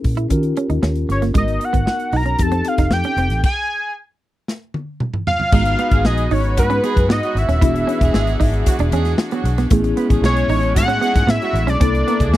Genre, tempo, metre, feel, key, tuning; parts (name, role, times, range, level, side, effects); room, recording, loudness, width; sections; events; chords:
polished 1980s jazz-funk pop; 115 BPM; 4/4; straight; A4 = 439 Hz
mellow tine electric piano; accompaniment; 0.0-12.4 s; Bb3 to A#5; -24 LUFS; left 3 dB; medium stereo tremolo, lush chorus
vintage muted fingered electric bass; bass; 0.0-12.4 s; D#1 to D#3; -19 LUFS; equal
modern studio drum kit; drums; 0.0-12.4 s; crash cymbal, hi-hat, kick drum, snare drum, toms; -18 LUFS; equal
semi-hollow electric guitar; riff; 0.2-12.2 s; G#3 to E4; -23 LUFS; right 6 dB; wide subtle chorus
fat analog lead; melody; 1.1-12.4 s; B4 to A#5; -20 LUFS; equal; chorus
rich chamber string section; sustained chords; 5.5-12.4 s; C3 to B4; -28 LUFS; left 2 dB
mellow horn section; second line; 5.8-12.4 s; F#3 to B4; -26 LUFS; right 8 dB
little or no reverb; dry, close 1970s-style studio recording; -15 LUFS; side -14 dB against mid
0.0-5.5 A section; 5.5-12.4 B section
stop 3.4-5.5; drum fill 4.5-5.5
0.3 D#7; 1.4 G#m7; 2.4 F7; 3.4 N.C.; 5.5 G#m7; 7.6 E9; 9.7 Amaj9; 11.8 C13